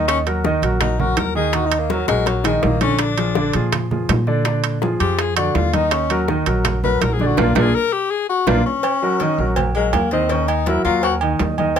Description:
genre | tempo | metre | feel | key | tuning
Afro-Cuban jazz | 164 BPM | 4/4 | straight | Eb minor | A4 = 440 Hz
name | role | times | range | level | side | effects
breathy tenor saxophone | second line | 0.0-11.1 s | Gb3 to Cb5 | -21 LUFS | left 7 dB | none
warm grand piano | accompaniment | 0.0-11.8 s | D3 to Eb5 | -20 LUFS | right 2 dB | none
upright bass | bass | 0.0-11.8 s | Bb1 to Bb2 | -22 LUFS | right 1 dB | none
bongos and cowbell | percussion | 0.1-11.8 s | none | -26 LUFS | left 7 dB | none
congas | percussion | 0.1-11.8 s | none | -27 LUFS | left 1 dB | none
timbales and agogo bells | percussion | 0.1-11.8 s | none | -24 LUFS | right 10 dB | none
room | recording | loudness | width
light reverb | close, detailed microphones | -16 LUFS | side -8 dB against mid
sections
0.0-8.8 A section; 8.8-11.8 A section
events
tenor saxophone solo 0.0-11.8; drum fill 2.1-3.0, 7.4-8.8; band accent 7.4-8.8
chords
0.1 Ebm; 3.0 Bb7; 5.9 Ebm7; 7.4 Bb; 8.8 Ebm7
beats
| 0.08 0.45 0.81 1.17 | 1.54 1.90 2.27 2.63 | 3.00 3.36 3.73 4.09 | 4.46 4.82 5.18 5.55 | 5.92 6.28 6.65 7.01 | 7.38 7.74 8.11 8.47 | 8.84 9.21 9.57 9.94 | 10.30 10.67 11.03 11.40 | 11.77

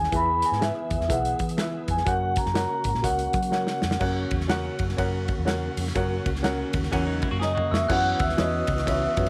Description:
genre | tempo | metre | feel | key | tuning
uptempo 1960s-style soul | 124 BPM | 4/4 | swing 62% on 8ths | unclear | A4 = 441 Hz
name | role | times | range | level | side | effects
vibraphone with soft mallets | melody | 0.0-4.0, 7.4-9.3 s | D#5 to B5 | -28 LUFS | equal | none
mellow tonewheel organ | sustained chords | 0.0-9.3 s | C#3 to G#4 | -37 LUFS | equal | fast rotary speaker, chorus vibrato
vintage muted fingered electric bass | bass | 0.0-9.3 s | B1 to F#3 | -32 LUFS | equal | none
natural country drum kit | drums | 0.0-9.3 s | crash cymbal, hi-hat, kick drum, ride cymbal, snare drum, toms | -31 LUFS | equal | none
dark upright piano | accompaniment | 0.1-9.3 s | E3 to C#6 | -33 LUFS | equal | none
clean electric guitar | riff | 6.9-7.9 s | E3 to G#4 | -35 LUFS | equal | none
glockenspiel with rubber mallets | second line | 7.4-9.3 s | D#6 to F#6 | -33 LUFS | equal | none
room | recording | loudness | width
light reverb, studio reverb | none | -25 LUFS | mono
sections
0.0-4.0 A section; 4.0-7.9 B section; 7.9-9.3 C section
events
vibraphone solo 0.0-4.0; drum fill 3.5-4.0, 7.4-7.9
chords
0.1 E; 2.1 F#; 7.9 F#7sus4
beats
| 0.12 0.61 1.09 1.58 | 2.06 2.55 3.04 3.52 | 4.01 4.50 4.98 5.47 | 5.95 6.44 6.92 7.41 | 7.89 8.38 8.87

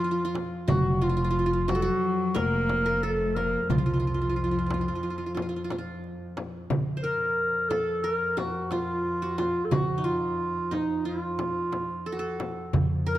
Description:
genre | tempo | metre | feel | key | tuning
Turkish makam ensemble | 179 BPM (eighths) | 9/8 | straight | F makam hicaz | A4 = 440 Hz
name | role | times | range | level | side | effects
dark clarinet | melody | 0.0-13.2 s | Eb4 to Bb4 | -28 LUFS | equal | none
dark cello | second line | 0.0-6.0 s | F3 to Bb3 | -33 LUFS | left 5 dB | none
qanun | second line | 0.0-13.2 s | Eb4 to C5 | -34 LUFS | right 2 dB | none
rich double bass | drone | 0.0-13.2 s | F2 | -35 LUFS | left 1 dB | none
frame drum | percussion | 0.3-12.9 s | none | -34 LUFS | left 4 dB | none
darbuka | percussion | 0.4-13.2 s | none | -30 LUFS | right 3 dB | none
upright bass | bass | 0.7-4.9, 12.7-13.2 s | F1 to F2 | -28 LUFS | right 1 dB | none
room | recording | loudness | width
moderate concert hall reverb, RT60 1.8 s | close, detailed microphones | -25 LUFS | side -14 dB against mid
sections
0.0-6.7 A section; 6.7-13.2 B section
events
none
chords
none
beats
0.02 0.35 | 0.69 1.02 1.35 1.69 2.02 2.36 2.69 3.03 3.36 | 3.69 4.03 4.36 4.70 5.03 5.37 5.70 6.04 6.37 | 6.70 7.04 7.37 7.71 8.04 8.38 8.71 9.05 9.38 | 9.72 10.05 10.39 10.72 11.06 11.39 11.73 12.06 12.40 | 12.73 13.07

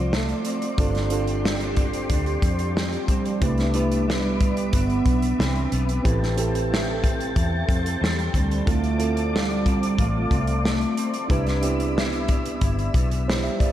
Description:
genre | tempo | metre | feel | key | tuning
indie pop, bedroom pop | 91 BPM | 4/4 | straight | C major | A4 = 445 Hz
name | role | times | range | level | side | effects
warbly nostalgic lead | melody | 0.0-11.1 s | F3 to C4 | -26 LUFS | right 2 dB | lush chorus, slapback echo, tape echo
electric guitar through a small old amp | accompaniment | 0.0-13.7 s | G2 to F4 | -32 LUFS | left 3 dB | ensemble chorus, vibrato effect, slapback echo
mellow reed electric piano | accompaniment | 0.0-13.7 s | C4 to E5 | -30 LUFS | right 4 dB | cassette tape, slapback echo
ensemble organ-string | sustained chords | 0.0-13.7 s | G4 to E6 | -31 LUFS | equal | ensemble chorus
vintage muted fingered electric bass | bass | 0.0-13.5 s | G1 to F2 | -26 LUFS | equal | none
loose indie drum kit | drums | 0.1-13.7 s | hi-hat, kick drum, snare drum | -24 LUFS | equal | none
room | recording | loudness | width
moderate concert hall reverb, RT60 2.2 s | big arena sound | -20 LUFS | side -12 dB against mid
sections
0.0-13.7 A section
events
none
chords
0.0 Dm7; 0.8 G7sus4; 3.4 Cmaj9; 6.0 Am7; 8.7 Dm7; 11.3 Cmaj9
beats
0.13 | 0.79 1.45 2.10 2.76 | 3.42 4.07 4.73 5.39 | 6.05 6.70 7.36 8.02 | 8.67 9.33 9.99 10.65 | 11.30 11.96 12.62 13.28

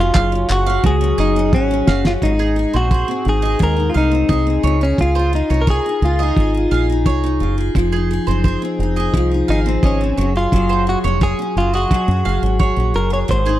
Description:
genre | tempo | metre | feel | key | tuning
acoustic pop | 87 BPM | 4/4 | straight | unclear | A4 = 440 Hz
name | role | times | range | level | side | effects
direct-recorded clean electric guitar | melody | 0.0-13.6 s | Db4 to Db5 | -19 LUFS | equal | spring reverb
picked steel-string acoustic guitar | accompaniment | 0.0-13.6 s | Ab2 to Ab4 | -21 LUFS | left 1 dB | double-tracked left and right
deep dub fingered electric bass | bass | 0.0-13.6 s | F1 to Gb2 | -18 LUFS | equal | none
mandolin | arpeggios | 0.1-13.6 s | Ab4 to F5 | -26 LUFS | right 7 dB | none
cloth-damped thuddy drum kit | drums | 0.1-13.5 s | handclaps, kick drum, snare drum, tambourine | -16 LUFS | equal | none
room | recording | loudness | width
little or no reverb | dry, close 1970s-style studio recording | -14 LUFS | side -13 dB against mid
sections
0.0-2.2 A section; 2.2-13.6 B section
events
drum fill 1.5-2.2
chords
0.0 Gbsus2; 2.2 Ab; 4.6 Dbadd9; 7.8 Fm7; 10.2 Gbsus2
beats
0.15 0.84 1.53 | 2.22 2.91 3.60 4.29 | 4.99 5.68 6.37 7.06 | 7.75 8.45 9.14 9.83 | 10.52 11.21 11.91 12.60 | 13.29

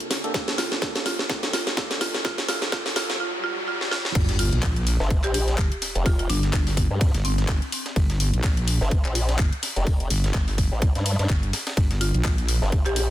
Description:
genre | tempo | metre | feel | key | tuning
bass house | 126 BPM | 4/4 | swing 57% on 16ths | G minor | A4 = 441 Hz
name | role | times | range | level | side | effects
percussive organ stab | stabs | 0.0-3.2 s | Bb3 to A4 | -34 LUFS | right 2 dB | chorus, cassette tape, sidechain pumping, dub echo
garage drum kit | drums | 0.0-13.1 s | crash cymbal, handclaps, hi-hat, snare drum | -27 LUFS | left 1 dB | none
riser, swell and sub drop | sound effects | 0.0-6.1 s | none | -33 LUFS | equal | none
electronic kick drum | drums | 0.3-12.8 s | none | -23 LUFS | equal | none
buzzing marimba with medium hard mallets | melody | 0.6-7.7, 12.0-13.0 s | C4 to G4 | -31 LUFS | right 1 dB | dub echo
wobble bass | bass | 4.2-12.6 s | G1 to Bb1 | -23 LUFS | equal | chorus, overdrive, sidechain pumping
breakbeat sampler-style drum kit | drums | 4.2-13.1 s | hi-hat, ride cymbal, snare drum | -36 LUFS | right 1 dB | high-pass filter on cymbals, high-pass filter on snare, high-pass filter on hats
formant-sweep wobble bass | bass | 5.0-13.1 s | F1 to G2 | -23 LUFS | equal | chorus, overdrive, sidechain pumping
room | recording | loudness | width
digital ambience | dense, heavily limited modern master, high-pass filter | -21 LUFS | side -13 dB against mid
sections
0.0-4.2 A section; 4.2-13.1 B section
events
build-up 0.0-4.2; drum fill 0.0-3.2, 3.8-4.2; riser 0.0-4.2; swell 3.2-4.2; drop 4.2-13.1; impact 4.2-6.1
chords
0.0 Gmadd9; 4.2 Gm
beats
| 0.34 0.82 1.29 1.77 | 2.25 2.72 3.20 3.68 | 4.15 4.63 5.11 5.58 | 6.06 6.53 7.01 7.49 | 7.96 8.44 8.91 9.39 | 9.87 10.34 10.82 11.29 | 11.77 12.25 12.72

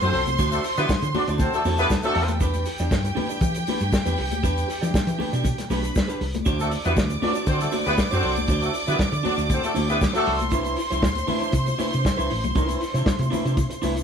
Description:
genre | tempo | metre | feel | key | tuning
disco | 118 BPM | 4/4 | straight | unclear | A4 = 443 Hz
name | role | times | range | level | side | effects
warm studio violin section | second line | 0.0-14.0 s | G4 to D6 | -29 LUFS | right 1 dB | none
electric guitar at the edge of break-up | accompaniment | 0.0-14.0 s | D4 to D5 | -29 LUFS | right 3 dB | none
warm horn section | stabs | 0.0-2.2, 6.6-10.4 s | A3 to D5 | -25 LUFS | left 1 dB | none
hollow-body short-scale fingered electric bass | bass | 0.0-14.0 s | A1 to E3 | -26 LUFS | equal | none
warm soul drum kit | drums | 0.0-14.0 s | hi-hat, kick drum, snare drum | -26 LUFS | equal | none
congas | percussion | 0.0-14.0 s | none | -33 LUFS | left 6 dB | none
tube shaker | percussion | 0.0-14.0 s | none | -43 LUFS | left 6 dB | none
room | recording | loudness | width
wet studio reverb, RT60 0.8 s | band playing live in one room | -20 LUFS | side -7 dB against mid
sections
0.0-14.0 A section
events
none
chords
0.0 D7; 10.3 Cmaj9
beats
| 0.39 0.89 1.40 1.90 | 2.41 2.91 3.42 3.93 | 4.43 4.94 5.45 5.95 | 6.46 6.97 7.48 7.99 | 8.49 9.00 9.51 10.02 | 10.53 11.04 11.54 12.05 | 12.56 13.07 13.58

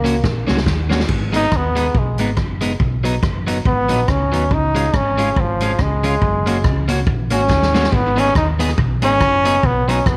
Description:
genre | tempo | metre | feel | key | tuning
ska | 140 BPM | 4/4 | swing 57% on 8ths | G# dorian | A4 = 440 Hz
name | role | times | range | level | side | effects
mellow trombone | melody | 0.0-0.7 s | A#3 | -26 LUFS | equal | none
electric guitar at the edge of break-up | accompaniment | 0.0-10.0 s | F#3 to G#4 | -25 LUFS | equal | tape echo
hollow-body short-scale fingered electric bass | bass | 0.0-10.2 s | F#1 to D#2 | -23 LUFS | equal | none
swinging big-band drum kit | drums | 0.1-10.2 s | crash cymbal, hi-hat, kick drum, rim click, snare drum | -22 LUFS | equal | tape echo
brilliant trombone | melody | 1.4-10.2 s | E#3 to D#4 | -20 LUFS | equal | none
room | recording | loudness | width
light reverb, small room ambience | none | -17 LUFS | mono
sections
0.0-1.1 A section; 1.1-10.2 B section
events
drum fill 0.2-1.1, 7.5-7.9; trombone solo 1.1-10.2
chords
0.0 F#; 1.1 G#m; 2.8 B; 4.5 C#; 6.2 F#; 7.9 G#m; 9.6 B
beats
0.24 0.67 | 1.09 1.52 1.95 2.38 | 2.80 3.23 3.66 4.08 | 4.51 4.94 5.37 5.79 | 6.22 6.65 7.08 7.50 | 7.93 8.36 8.78 9.21 | 9.64 10.06

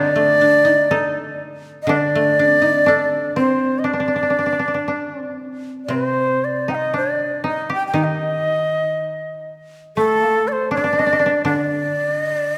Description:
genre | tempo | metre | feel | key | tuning
japanese traditional, Japanese chamber music | 60 BPM | 2/4 | rubato | D in sen | A4 = 439 Hz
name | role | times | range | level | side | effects
bright shakuhachi | melody | 0.0-12.6 s | A4 to G5 | -20 LUFS | equal | none
koto | second line | 0.0-12.6 s | A3 to C5 | -26 LUFS | equal | none
koto | accompaniment | 0.0-12.6 s | C3 to A4 | -27 LUFS | equal | none
room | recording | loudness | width
wet church reverb, RT60 2.5 s | none | -18 LUFS | mono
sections
0.0-12.6 A section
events
none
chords
none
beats
0.89 | 1.89 2.87 | 3.85 4.87 | 5.90 6.93 | 7.95 8.97 | 9.97 10.96 | 11.95

